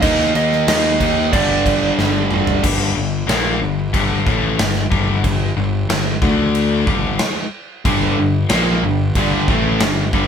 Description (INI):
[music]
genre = hard rock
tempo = 92 BPM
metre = 4/4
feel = straight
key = G minor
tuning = A4 = 440 Hz
[part]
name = lightly driven lead guitar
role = melody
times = 0.0-2.3 s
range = D5 to Eb5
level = -19 LUFS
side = right 5 dB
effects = none
[part]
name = overdriven electric guitar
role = riff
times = 0.0-10.3 s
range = G2 to Eb4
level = -19 LUFS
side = left 5 dB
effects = none
[part]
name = overdriven electric guitar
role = riff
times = 0.0-2.6, 7.9-10.3 s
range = G2 to Eb4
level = -21 LUFS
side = right 7 dB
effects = none
[part]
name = fuzz picked electric bass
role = bass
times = 0.0-10.3 s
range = G1 to Eb2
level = -21 LUFS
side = equal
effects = overdrive
[part]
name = gated 80s drum kit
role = drums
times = 0.0-10.3 s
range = crash cymbal, kick drum, snare drum, toms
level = -20 LUFS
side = equal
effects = none
[sound]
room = moderate large studio reverb, RT60 0.9 s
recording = band playing live in one room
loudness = -14 LUFS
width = side -7 dB against mid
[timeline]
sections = 0.0-2.6 A section; 2.6-10.3 B section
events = drum fill 2.0-2.6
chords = 0.0 Eb5; 1.3 G5; 2.6 Gm; 6.2 D5; 6.9 Gm